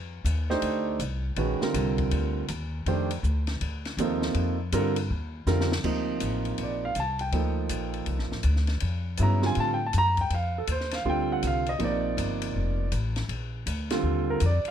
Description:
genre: modal jazz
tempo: 161 BPM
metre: 4/4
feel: swing 64% on 8ths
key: Bb major from 5.8 s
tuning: A4 = 440 Hz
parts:
  - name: upright bass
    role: bass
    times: 0.0-14.7 s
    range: F1 to A2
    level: -28 LUFS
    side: left 1 dB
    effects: none
  - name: compact cocktail drum kit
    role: drums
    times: 0.3-14.7 s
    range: crash cymbal, hi-hat, kick drum, ride cymbal, snare drum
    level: -36 LUFS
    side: left 4 dB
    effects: none
  - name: warm grand piano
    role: accompaniment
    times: 0.5-14.7 s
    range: C3 to Bb5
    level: -27 LUFS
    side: right 3 dB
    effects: none
room: light reverb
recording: close, detailed microphones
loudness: -25 LUFS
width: side -9 dB against mid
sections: 0.0-5.8 A section; 5.8-14.7 B section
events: drum fill 5.5-5.8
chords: 0.0 F13sus4; 5.8 Bbmaj9; 11.8 Ebmaj9

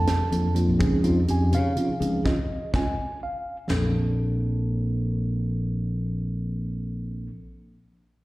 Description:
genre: electric jazz fusion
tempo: 83 BPM (dotted quarters)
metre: 6/8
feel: straight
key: Bb major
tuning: A4 = 440 Hz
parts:
  - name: mellow tine electric piano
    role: accompaniment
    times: 0.0-7.3 s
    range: F3 to A5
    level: -27 LUFS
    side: right 1 dB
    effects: slow stereo tremolo, plate reverb, slapback echo
  - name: fingered electric bass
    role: bass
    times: 0.0-7.3 s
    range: Bb1 to Db3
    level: -25 LUFS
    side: equal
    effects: none
  - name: tight funk drum kit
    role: drums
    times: 0.1-3.8 s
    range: hi-hat, kick drum, snare drum, splash cymbal, toms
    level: -28 LUFS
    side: equal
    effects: slapback echo
room: light reverb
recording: live gig heard through the venue's PA, recital hall reverb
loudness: -23 LUFS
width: side -19 dB against mid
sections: 0.0-3.7 A section; 3.7-6.6 B section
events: band accent 2.2-3.7; drum fill 3.0-3.7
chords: 0.0 Bbmaj9; 0.8 Dbmaj9; 3.7 Bbmaj9

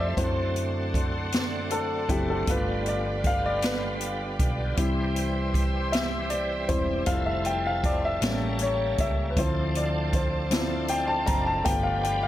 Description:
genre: slow gospel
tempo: 52 BPM (dotted quarters)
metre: 6/8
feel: straight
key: unclear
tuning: A4 = 444 Hz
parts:
  - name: warm upright piano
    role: accompaniment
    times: 0.0-12.3 s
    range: F3 to Bb5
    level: -28 LUFS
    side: left 2 dB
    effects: none
  - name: bright tonewheel organ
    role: sustained chords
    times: 0.0-12.3 s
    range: D3 to A4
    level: -34 LUFS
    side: right 2 dB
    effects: slow rotary speaker, overdrive, chorus vibrato
  - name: warm studio string section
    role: sustained chords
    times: 0.0-12.3 s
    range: Bb3 to C6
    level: -37 LUFS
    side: equal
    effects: none
  - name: hollow-body short-scale fingered electric bass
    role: bass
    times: 0.0-12.3 s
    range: E1 to F#2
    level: -31 LUFS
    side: right 1 dB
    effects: none
  - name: swinging big-band drum kit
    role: drums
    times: 0.2-12.2 s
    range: hi-hat, kick drum, snare drum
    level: -29 LUFS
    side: equal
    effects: none
room: light reverb, studio ambience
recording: faint mains hum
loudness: -24 LUFS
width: side -13 dB against mid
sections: 0.0-12.3 A section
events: upright piano solo 0.0-12.3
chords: 0.2 D7/F#; 2.5 G7; 4.8 C; 7.1 Fmaj7; 8.2 A7b9; 9.4 Dm7; 11.7 G7

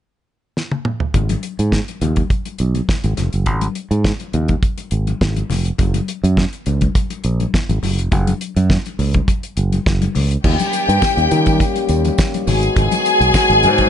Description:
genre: disco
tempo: 103 BPM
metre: 4/4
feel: straight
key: unclear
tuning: A4 = 443 Hz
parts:
  - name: damped 70s drum kit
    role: drums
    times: 0.6-13.9 s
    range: crash cymbal, hi-hat, kick drum, snare drum, toms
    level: -19 LUFS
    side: equal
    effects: none
  - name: fingered electric bass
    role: bass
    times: 1.1-13.9 s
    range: E#1 to D#3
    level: -16 LUFS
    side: right 1 dB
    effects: none
  - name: congas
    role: percussion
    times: 1.1-13.9 s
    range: none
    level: -26 LUFS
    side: left 10 dB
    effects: none
  - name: bright studio string section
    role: second line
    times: 10.4-13.9 s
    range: G4 to G#5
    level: -16 LUFS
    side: left 2 dB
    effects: none
  - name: dark French horn section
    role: sustained chords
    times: 10.4-13.9 s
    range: D#3 to G4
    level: -20 LUFS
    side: left 3 dB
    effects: none
  - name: tambourine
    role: percussion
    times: 10.6-13.8 s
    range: none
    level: -33 LUFS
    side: right 6 dB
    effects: none
room: little or no reverb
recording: nothing above 10.7 kHz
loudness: -15 LUFS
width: side -9 dB against mid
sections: 0.0-1.1 A section; 1.1-10.4 B section; 10.4-13.9 C section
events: drum fill 0.6-1.1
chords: 0.0 N.C.; 1.1 G#5; 5.8 F#5; 10.4 D#7; 12.5 G#m7

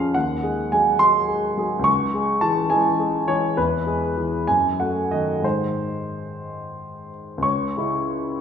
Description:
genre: classical, romantic character piece for solo piano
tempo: 58-73 BPM (dotted quarters)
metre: 6/8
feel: rubato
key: C# minor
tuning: A4 = 440 Hz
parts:
  - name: warm grand piano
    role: solo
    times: 0.0-8.4 s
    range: C#2 to C#6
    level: -20 LUFS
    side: equal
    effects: none
room: wet recital hall reverb, RT60 1.6 s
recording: recorded in a church or concert hall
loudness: -19 LUFS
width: side -8 dB against mid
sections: 0.0-7.4 A section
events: none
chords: 0.2 G#7/D#; 1.9 C#m; 3.6 E; 4.5 D#dim/F#; 5.4 G#; 7.4 C#m

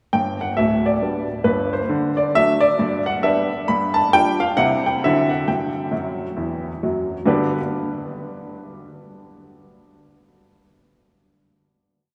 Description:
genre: jazz, stride piano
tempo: 135 BPM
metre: 4/4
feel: swing 60% on 8ths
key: G major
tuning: A4 = 441 Hz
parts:
  - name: clear upright piano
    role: solo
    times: 0.1-7.6 s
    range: D1 to B5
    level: -20 LUFS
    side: equal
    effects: none
room: wet cathedral reverb, RT60 4.3 s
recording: recorded in a church or concert hall, small room ambience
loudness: -20 LUFS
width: mono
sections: 0.1-7.3 A section; 7.3-9.1 final chord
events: upright piano fill 5.9-7.3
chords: 0.1 G; 1.9 D; 2.8 G; 3.7 G5; 4.6 C; 5.0 D9; 5.5 Emadd9; 7.3 G

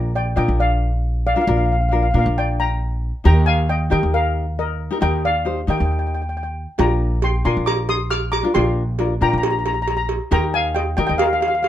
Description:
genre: calypso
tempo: 136 BPM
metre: 4/4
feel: straight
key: Eb major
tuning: A4 = 440 Hz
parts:
  - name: steel pan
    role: melody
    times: 0.0-11.7 s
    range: Bb4 to F6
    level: -22 LUFS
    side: left 2 dB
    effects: none
  - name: tenor ukulele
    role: accompaniment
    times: 0.0-11.5 s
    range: D4 to C5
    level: -23 LUFS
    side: left 3 dB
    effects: none
  - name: upright bass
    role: bass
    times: 0.0-11.7 s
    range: Bb1 to Eb3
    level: -20 LUFS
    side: equal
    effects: none
  - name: cowbell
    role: percussion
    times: 6.8-11.7 s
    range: none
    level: -24 LUFS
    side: right 5 dB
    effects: none
room: light reverb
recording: minimal, uncompressed stereo recording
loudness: -17 LUFS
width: side -12 dB against mid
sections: 0.0-11.7 A section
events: none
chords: 0.0 Bb6; 3.3 Eb; 6.8 Bb6; 10.3 Eb

